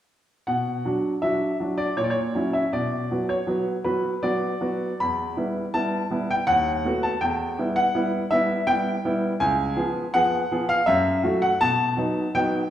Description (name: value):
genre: classical-period piano sonatina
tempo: 82 BPM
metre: 3/4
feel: rubato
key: B minor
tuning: A4 = 441 Hz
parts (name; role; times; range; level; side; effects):
- bright baby grand piano; solo; 0.5-12.7 s; C#2 to B5; -21 LUFS; equal; none
room: wet recital hall reverb, RT60 1.6 s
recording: heard from further back in the room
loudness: -21 LUFS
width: side -11 dB against mid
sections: 0.5-12.7 A section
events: none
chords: 0.5 Bm; 2.0 F#7/A#; 2.7 Bm; 5.0 Em; 6.5 B7/D#; 7.2 Em; 9.4 C#7; 10.9 F#m; 11.6 B7